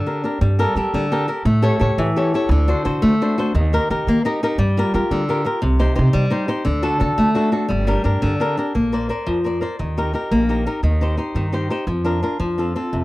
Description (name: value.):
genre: italian folk, Italian serenade.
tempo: 115 BPM (dotted quarters).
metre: 6/8.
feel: straight.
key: G minor, Bb major from 8.8 s.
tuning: A4 = 438 Hz.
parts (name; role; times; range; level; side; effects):
flamenco guitar; accompaniment; 0.0-13.0 s; C3 to Eb5; -19 LUFS; left 1 dB; none.
upright bass; bass; 0.4-13.0 s; G1 to G3; -20 LUFS; right 1 dB; none.
room: small room ambience.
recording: dry, close 1970s-style studio recording.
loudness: -17 LUFS.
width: side -18 dB against mid.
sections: 0.4-8.8 A section; 8.8-13.0 B section.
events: nylon-string guitar fill 4.1-4.6.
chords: 0.4 Gmadd9; 1.5 A7; 2.5 D7; 3.5 Eb; 4.6 Gm7; 5.6 Cm; 6.7 D; 7.7 Gm; 8.8 Bbadd9; 9.8 Eb; 10.8 Cm/Eb; 11.9 Bb/F; 12.4 F.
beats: | 0.41 0.94 | 1.46 1.98 | 2.50 3.02 | 3.54 4.07 | 4.59 5.11 | 5.63 6.15 | 6.67 7.18 | 7.70 8.23 | 8.75 9.28 | 9.79 10.31 | 10.83 11.35 | 11.87 12.39 | 12.92.